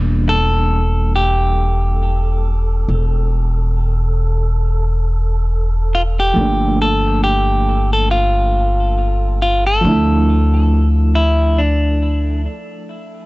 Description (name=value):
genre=trip hop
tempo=69 BPM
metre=4/4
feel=swing 57% on 16ths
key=unclear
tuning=A4 = 440 Hz
part: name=overdriven reed electric piano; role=accompaniment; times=0.0-13.3 s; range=E3 to E4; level=-22 LUFS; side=right 2 dB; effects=tremolo, tape echo
part: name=upright bass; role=bass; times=0.0-12.5 s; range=E1 to D2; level=-15 LUFS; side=equal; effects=none
part: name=wind-like tuned noise texture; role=texture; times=1.1-12.5 s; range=A4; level=-32 LUFS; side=right 2 dB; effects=built-in reverb
part: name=clean electric guitar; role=melody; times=0.3-12.4 s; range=D4 to A4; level=-19 LUFS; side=left 1 dB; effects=tape echo
room=digital ambience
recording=dry, gritty hardware recording, transformer saturation, nothing above 7.9 kHz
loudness=-13 LUFS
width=side -21 dB against mid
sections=0.0-13.3 A section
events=break 12.4-13.3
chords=0.0 Em7b5; 6.4 Gm9; 9.8 Dmadd9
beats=0.28 1.15 2.02 | 2.88 3.75 4.62 5.49 | 6.36 7.23 8.10 8.97 | 9.84 10.71 11.58 12.45